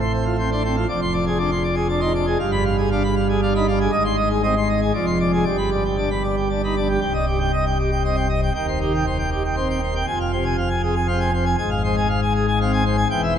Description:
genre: classical, organ toccata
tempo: 118 BPM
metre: 3/4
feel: straight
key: C minor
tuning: A4 = 442 Hz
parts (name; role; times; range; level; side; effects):
- pipe organ, plenum; solo; 0.0-13.4 s; C1 to C6; -18 LUFS; equal; none
room: wet cathedral reverb, RT60 4.7 s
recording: nothing above 10.3 kHz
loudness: -18 LUFS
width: side -8 dB against mid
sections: 0.0-7.0 A section; 7.0-13.4 B section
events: none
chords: 0.0 F/A; 0.9 Dm7b5/F; 2.4 G7b9; 3.9 Ab; 4.9 Dm7b5/F; 5.5 G; 7.0 Cm; 8.6 Cm/Eb; 10.1 Fm; 11.6 Fm/Ab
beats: 0.39 | 0.89 1.39 1.90 | 2.40 2.91 3.42 | 3.92 4.43 4.94 | 5.46 5.98 6.50 | 7.02 7.53 8.04 | 8.55 9.06 9.56 | 10.07 10.58 11.09 | 11.59 12.09 12.59 | 13.09

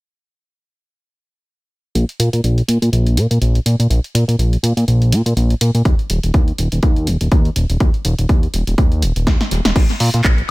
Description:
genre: filtered disco house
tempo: 123 BPM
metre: 4/4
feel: swing 56% on 16ths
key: unclear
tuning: A4 = 441 Hz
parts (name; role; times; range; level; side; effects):
- fat analog bass; bass; 2.0-10.4 s; Eb1 to Bb2; -15 LUFS; equal; sidechain pumping, low-pass filter
- punchy analog drum machine; drums; 2.0-10.5 s; crash cymbal, handclaps, hi-hat, snare drum; -22 LUFS; equal; sidechain pumping on hats, sidechain pumping on cymbals, sidechain pumping on perc, dub echo
- electronic kick drum; drums; 5.9-10.4 s; none; -14 LUFS; equal; none
room: digital ambience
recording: echo-heavy mix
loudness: -13 LUFS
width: side -22 dB against mid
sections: 2.0-9.8 A section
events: filter sweep on analog synth bass 2.0-9.8; drum fill 9.3-9.8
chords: none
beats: | 1.95 2.44 2.93 3.42 | 3.90 4.39 4.88 5.37 | 5.85 6.34 6.83 7.32 | 7.81 8.29 8.78 9.27 | 9.76 10.24

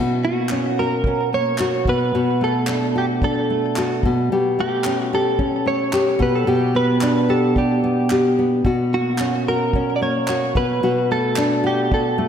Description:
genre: acoustic pop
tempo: 110 BPM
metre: 4/4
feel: swing 55% on 16ths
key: B minor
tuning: A4 = 438 Hz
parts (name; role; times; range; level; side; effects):
- nylon-string guitar; accompaniment; 0.0-12.3 s; B2 to G4; -19 LUFS; left 1 dB; none
- direct-recorded clean electric guitar; melody; 0.2-12.3 s; F#4 to D5; -22 LUFS; right 2 dB; analog chorus, ping-pong delay
- unplugged drum kit; drums; 0.5-12.1 s; handclaps, kick drum; -26 LUFS; equal; none
room: wet lush hall reverb, RT60 1.7 s, studio ambience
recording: dreamy mix soaked in reverb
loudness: -17 LUFS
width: side -8 dB against mid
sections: 0.0-12.3 A section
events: none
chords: 0.0 F#/B; 1.9 Bm7; 4.0 A7/B; 6.2 G/B; 8.7 F#/B; 10.6 Bm7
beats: 0.49 1.04 1.58 | 2.13 2.67 3.21 3.76 | 4.30 4.85 5.39 5.93 | 6.48 7.02 7.57 8.11 | 8.65 9.20 9.74 10.29 | 10.83 11.38 11.92

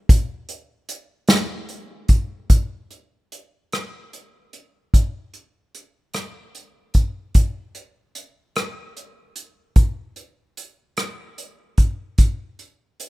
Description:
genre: pop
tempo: 50 BPM (dotted quarters)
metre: 6/8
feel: straight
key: none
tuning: none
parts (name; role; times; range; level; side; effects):
- unplugged drum kit; drums; 0.1-13.1 s; hi-hat, kick drum, rim click, snare drum; -16 LUFS; equal; none
room: little or no reverb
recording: rough home demo mix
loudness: -19 LUFS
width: side -20 dB against mid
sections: 0.0-2.5 A section; 2.5-13.1 B section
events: none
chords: none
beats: | 0.09 1.29 | 2.51 3.73 | 4.94 6.14 | 7.35 8.56 | 9.76 10.97 | 12.19

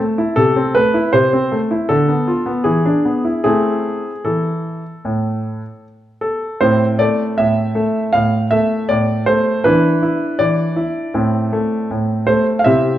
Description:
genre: classical-period piano sonatina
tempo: 79 BPM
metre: 4/4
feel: rubato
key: A minor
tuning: A4 = 441 Hz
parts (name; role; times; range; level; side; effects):
- clear grand piano; solo; 0.0-13.0 s; A2 to A5; -14 LUFS; equal; none
room: moderate recital hall reverb, RT60 1.6 s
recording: dark, warm production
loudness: -14 LUFS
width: side -12 dB against mid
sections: 0.0-6.6 A section; 6.6-13.0 B section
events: none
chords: 0.4 Am/C; 1.9 Bdim/D; 2.7 E7; 3.5 Am; 9.6 E5; 11.1 Am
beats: | 0.38 1.14 1.90 2.67 | 3.46 4.26 5.05 5.84 | 6.62 7.38 8.14 8.89 | 9.65 10.40 11.15 11.91 | 12.66

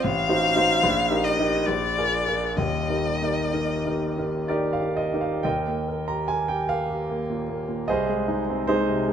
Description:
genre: classical, romantic duo for violin and grand piano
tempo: 61-77 BPM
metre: 3/4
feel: rubato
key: Eb major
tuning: A4 = 438 Hz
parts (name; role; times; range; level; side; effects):
- rich violin; melody; 0.0-4.5 s; D5 to F5; -24 LUFS; left 2 dB; none
- warm concert grand piano; accompaniment; 0.0-9.1 s; Eb1 to Bb5; -23 LUFS; equal; none
room: light reverb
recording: lossy compression artefacts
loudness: -22 LUFS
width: side -8 dB against mid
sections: 0.0-5.4 A section; 5.4-9.1 A section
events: none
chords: 0.0 Adim7; 0.8 Eb/Bb; 1.7 Bb7; 2.6 Eb; 7.9 Ab/C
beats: | 0.03 0.83 1.68 | 2.58 3.54 4.49 | 5.44 6.29 7.10 | 7.88 8.68

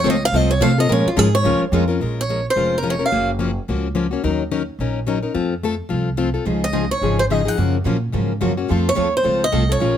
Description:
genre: acoustic string swing (jazz manouche)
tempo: 215 BPM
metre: 4/4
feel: swing 58% on 8ths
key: Bb minor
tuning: A4 = 439 Hz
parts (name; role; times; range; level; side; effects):
- picked swing-style acoustic guitar; melody; 0.0-3.3, 6.6-10.0 s; F4 to Gb5; -20 LUFS; right 1 dB; none
- picked plugged-in steel-string acoustic guitar; accompaniment; 0.0-10.0 s; Db3 to Bb4; -21 LUFS; left 5 dB; none
- upright bass; bass; 0.0-10.0 s; F1 to C3; -22 LUFS; right 1 dB; none
- picked steel-string acoustic guitar; accompaniment; 0.1-1.8, 6.5-10.0 s; Db3 to Bb4; -26 LUFS; right 7 dB; none
room: light reverb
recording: none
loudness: -17 LUFS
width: side -10 dB against mid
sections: 0.0-2.0 A section; 2.0-10.0 B section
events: steel-string acoustic guitar solo 0.0-2.0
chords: 0.0 F; 0.9 Bbm7; 3.1 Gbmaj7; 4.2 Ebm7; 5.4 F; 6.5 Dbadd9; 7.6 Gbmaj7; 8.7 F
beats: 0.06 0.34 0.61 | 0.89 1.17 1.45 1.73 | 2.01 2.29 2.56 2.84 | 3.12 3.40 3.68 3.96 | 4.24 4.52 4.79 5.07 | 5.35 5.63 5.91 6.19 | 6.47 6.75 7.02 7.30 | 7.58 7.86 8.14 8.41 | 8.69 8.97 9.25 9.53 | 9.81

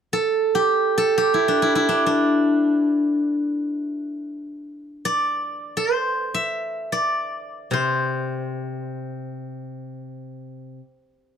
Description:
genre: chinese traditional, Chinese solo plucked strings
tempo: free time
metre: none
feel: none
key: unclear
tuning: A4 = 439 Hz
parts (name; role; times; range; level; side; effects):
- steel-string zither; solo; 0.1-10.8 s; C3 to E5; -21 LUFS; equal; none
room: moderate studio reverb, RT60 0.6 s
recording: dark, warm production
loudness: -20 LUFS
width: side -8 dB against mid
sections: 0.0-11.4 A section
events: none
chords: none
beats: free time

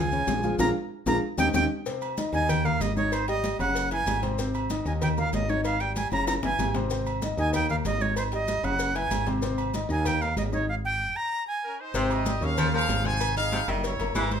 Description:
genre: latin, salsa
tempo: 190 BPM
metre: 4/4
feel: straight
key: Ab major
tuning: A4 = 440 Hz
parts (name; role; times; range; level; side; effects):
- bright reedy jazz flute; melody; 0.0-11.8 s; C5 to Bb5; -28 LUFS; right 2 dB; none
- bright upright piano; accompaniment; 0.0-14.4 s; C3 to Db6; -31 LUFS; left 3 dB; none
- woody fretless electric bass; bass; 0.0-14.4 s; Gb1 to Eb2; -30 LUFS; equal; none
- congas; percussion; 0.1-14.4 s; none; -33 LUFS; equal; none
- maracas; percussion; 0.1-14.4 s; none; -42 LUFS; left 4 dB; none
- bongos and cowbell; percussion; 0.3-14.4 s; none; -35 LUFS; left 5 dB; none
- timbales and agogo bells; percussion; 0.3-14.3 s; none; -34 LUFS; right 6 dB; none
- bright trumpet section; melody; 11.6-14.4 s; Db4 to Ab5; -30 LUFS; equal; none
- clear baritone saxophone; second line; 11.9-14.3 s; C3 to F3; -30 LUFS; left 1 dB; none
room: light reverb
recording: minimal, uncompressed stereo recording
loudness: -24 LUFS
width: side -8 dB against mid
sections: 0.0-1.9 A section; 1.9-11.9 B section; 11.9-14.4 C section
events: band accent 0.6-1.9; drum fill 0.9-1.9, 6.1-6.9; stop 10.7-11.9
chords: 0.0 Db; 0.6 Bb5; 1.2 Eb7; 1.9 Ab; 2.5 Ebsus4; 3.1 Ab5; 3.8 Gbsus2; 4.4 Ab; 5.0 Ebsus4; 5.6 Ab5; 6.3 Gbsus2; 6.9 Ab; 7.5 Ebsus4; 8.2 Ab5; 8.8 Gbsus2; 9.4 Ab; 10.1 Ebsus4; 10.7 Fmadd9/Ab (rootless); 11.3 Bbm11; 11.9 Abmaj7; 12.6 Eb9sus4; 13.2 Abmaj7; 13.8 Gb9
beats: 0.28 | 0.60 0.91 1.23 1.54 | 1.86 2.18 2.49 2.81 | 3.12 3.44 3.76 4.07 | 4.39 4.70 5.02 5.33 | 5.65 5.96 6.28 6.59 | 6.91 7.22 7.54 7.85 | 8.17 8.48 8.79 9.11 | 9.43 9.74 10.05 10.37 | 10.69 11.00 11.32 11.63 | 11.95 12.26 12.58 12.89 | 13.21 13.52 13.84 14.15

